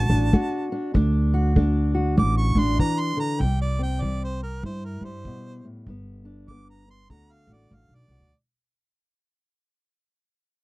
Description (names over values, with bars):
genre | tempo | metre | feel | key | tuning
acoustic country blues, solo or duo | 98 BPM | 4/4 | swing 61% on 8ths | unclear | A4 = 438 Hz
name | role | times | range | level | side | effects
clear harmonica | melody | 0.0-8.3 s | Bb4 to D6 | -30 LUFS | right 3 dB | none
fingerpicked steel-string acoustic guitar | accompaniment | 0.0-8.3 s | G2 to F#4 | -27 LUFS | left 1 dB | none
upright bass | bass | 0.0-8.3 s | G1 to G2 | -23 LUFS | equal | none
kick drum | drums | 0.3-7.9 s | none | -22 LUFS | equal | none
room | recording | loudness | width
little or no reverb | dry, close 1970s-style studio recording | -20 LUFS | side -20 dB against mid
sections
0.0-8.3 A section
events
fade-out 0.0-8.3; harmonica solo 0.0-8.3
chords
0.0 D; 3.4 C; 5.9 G; 7.1 D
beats
0.34 | 0.95 1.57 2.19 2.80 | 3.42 4.04 4.65 5.27 | 5.88 6.50 7.11 7.73